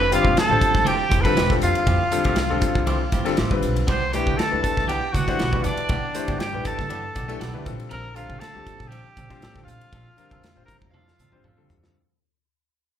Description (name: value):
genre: electric jazz fusion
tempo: 119 BPM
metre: 4/4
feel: straight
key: Bb lydian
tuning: A4 = 440 Hz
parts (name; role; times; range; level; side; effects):
- clear trumpet; melody; 0.0-11.6 s; D4 to C5; -25 LUFS; right 1 dB; none
- overdriven electric guitar; second line; 0.0-11.6 s; D5 to C6; -29 LUFS; right 2 dB; slapback echo
- upright bass; bass; 0.0-11.9 s; E1 to C3; -27 LUFS; equal; none
- clear concert grand piano; accompaniment; 0.1-11.9 s; D3 to C5; -27 LUFS; left 4 dB; none
- clean electric guitar; stabs; 0.1-11.9 s; E3 to A4; -32 LUFS; right 1 dB; none
- modern studio drum kit; drums; 0.1-11.9 s; hi-hat, kick drum, ride cymbal, snare drum, toms; -25 LUFS; equal; none
- congas; percussion; 4.3-11.7 s; none; -35 LUFS; right 4 dB; none
room: moderate large studio reverb, RT60 0.9 s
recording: band playing live in one room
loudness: -19 LUFS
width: side -9 dB against mid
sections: 0.0-11.9 A section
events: fade-out 0.0-11.9; drum fill 10.9-11.9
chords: 0.0 Fmaj9; 3.9 Cmaj9; 7.7 Bbmaj9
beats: 0.35 0.86 1.36 | 1.87 2.37 2.87 3.38 | 3.88 4.38 4.89 5.39 | 5.90 6.40 6.90 7.41 | 7.91 8.42 8.92 9.42 | 9.93 10.43 10.94 11.44